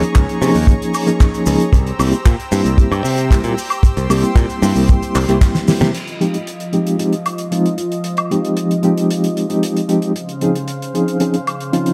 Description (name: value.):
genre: nu-disco, nu disco.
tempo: 114 BPM.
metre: 4/4.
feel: straight.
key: F minor.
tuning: A4 = 440 Hz.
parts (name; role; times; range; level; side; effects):
mellow reed electric piano; accompaniment; 0.0-11.9 s; F3 to Ab4; -19 LUFS; equal; fast tremolo, sidechain pumping, low-pass filter, tape echo.
lush unison pad; sustained chords; 0.0-11.9 s; Db3 to E6; -27 LUFS; equal; chorus, sidechain pumping.
modern bright picked electric bass; bass; 0.0-5.9 s; C2 to C3; -20 LUFS; equal; none.
damped 70s drum kit; drums; 0.0-11.9 s; crash cymbal, handclaps, hi-hat, snare drum, woodblock; -26 LUFS; equal; none.
maracas; percussion; 0.0-5.9 s; none; -35 LUFS; equal; none.
kick drum; drums; 0.2-5.5 s; none; -14 LUFS; equal; none.
room: light reverb, small room ambience.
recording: none.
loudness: -16 LUFS.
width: mono.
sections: 0.0-5.9 A section; 5.9-11.9 B section.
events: drum fill 5.4-5.9; band accent 5.8; filter sweep on reed electric piano 5.9-11.9.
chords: 0.0 Eb7sus4; 1.7 C7; 5.9 Fm7; 10.2 Dbmaj7.